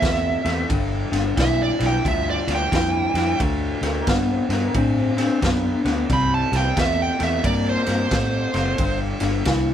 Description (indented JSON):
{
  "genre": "electric blues shuffle",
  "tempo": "89 BPM",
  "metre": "4/4",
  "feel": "swing 63% on 8ths",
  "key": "G mixolydian",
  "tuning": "A4 = 440 Hz",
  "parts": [
    { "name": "smooth overdriven lead guitar", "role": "melody", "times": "0.0-9.0 s", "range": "C5 to B5", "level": "-24 LUFS", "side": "right 4 dB", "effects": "none" },
    { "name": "electric guitar through a small old amp", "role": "riff", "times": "0.0-9.7 s", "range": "G2 to C4", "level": "-23 LUFS", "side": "left 3 dB", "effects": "none" },
    { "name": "vintage muted fingered electric bass", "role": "bass", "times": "0.0-9.7 s", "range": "F#1 to A2", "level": "-25 LUFS", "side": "equal", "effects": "none" },
    { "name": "raw garage drum kit", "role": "drums", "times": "0.0-9.7 s", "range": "kick drum, ride cymbal, snare drum", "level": "-25 LUFS", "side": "equal", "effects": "none" },
    { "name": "electric guitar through a small old amp", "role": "second line", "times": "3.9-6.0 s", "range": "C4 to Bb4", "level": "-27 LUFS", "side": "right 2 dB", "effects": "none" }
  ],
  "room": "light reverb",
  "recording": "band playing live in one room",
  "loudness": "-18 LUFS",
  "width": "side -9 dB against mid",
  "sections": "0.0-9.7 A section",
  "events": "none",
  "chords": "0.0 C; 0.7 G; 3.4 D; 6.1 C; 8.8 G5"
}